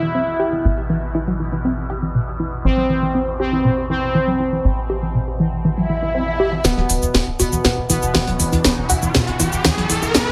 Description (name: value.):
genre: melodic techno.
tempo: 120 BPM.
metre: 4/4.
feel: straight.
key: unclear.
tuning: A4 = 439 Hz.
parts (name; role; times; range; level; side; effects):
analog synth brass; melody; 0.0-8.8 s; B2 to E4; -25 LUFS; equal; chorus, dub echo.
tight sequenced synth; arpeggios; 0.0-10.2 s; B2 to G4; -24 LUFS; equal; chorus, delay.
plucky analog bass; bass; 0.0-10.3 s; D1 to A1; -26 LUFS; equal; none.
overtone-sweeping drone; drone; 0.0-10.3 s; E2 to B2; -32 LUFS; equal; chorus, built-in reverb.
swell and riser; sound effects; 5.8-10.3 s; none; -27 LUFS; equal; none.
techno drum kit; drums; 6.6-10.2 s; hi-hat, shaker, snare drum; -21 LUFS; equal; high-pass filter on snare, high-pass filter on perc, high-pass filter on hats, high-pass filter on room.
warm soul drum kit; drums; 6.6-10.3 s; hi-hat, snare drum, tambourine; -34 LUFS; equal; none.
room: moderate lush hall reverb, RT60 1.6 s, small room ambience.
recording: none.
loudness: -19 LUFS.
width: mono.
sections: 0.0-6.6 A section; 6.6-10.3 B section.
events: swell 5.8-6.6; build-up 6.6-10.3; drum fill 6.6-10.3; riser 6.6-10.3; filter sweep on synth arpeggio sound 6.6-10.3.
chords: 0.0 Am; 6.6 E5.